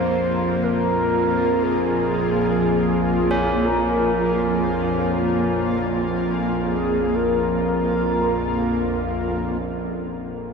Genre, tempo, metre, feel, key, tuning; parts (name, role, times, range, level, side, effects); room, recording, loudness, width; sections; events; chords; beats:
dark ambient drone; free time; Bb minor; A4 = 441 Hz
mellow horn-like synth lead; melody; 0.0-9.1 s; Ab4 to C5; -24 LUFS; left 1 dB; phaser, analog chorus, tape echo
granular cloud pad; sustained chords; 0.0-10.5 s; Bb3 to F4; -24 LUFS; right 1 dB; built-in reverb
tubular bells; arpeggios; 0.0-9.6 s; Db4 to F4; -30 LUFS; left 1 dB; tape echo
bowed-like drone; drone; 0.0-10.5 s; Bb1 to F2; -24 LUFS; equal; built-in reverb
bronze singing bowl; texture; 9.6-10.5 s; barely audible
wet huge ambient reverb, RT60 7.9 s; dark, warm production; -19 LUFS; side -5 dB against mid
0.0-9.6 A section
0.0 Bbm
free time